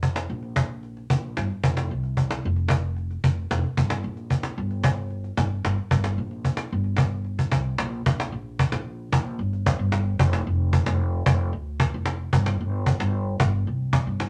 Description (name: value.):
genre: highlife guitar band.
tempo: 112 BPM.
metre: 4/4.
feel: straight.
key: unclear.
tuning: A4 = 438 Hz.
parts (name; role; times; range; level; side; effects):
upright bass; bass; 0.0-14.3 s; F1 to F2; -28 LUFS; equal; none.
cajon; drums; 0.0-14.3 s; none; -25 LUFS; equal; none.
room: moderate studio reverb, RT60 0.6 s.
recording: none.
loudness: -25 LUFS.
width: mono.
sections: 0.0-8.1 A section; 8.1-14.3 B section.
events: none.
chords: none.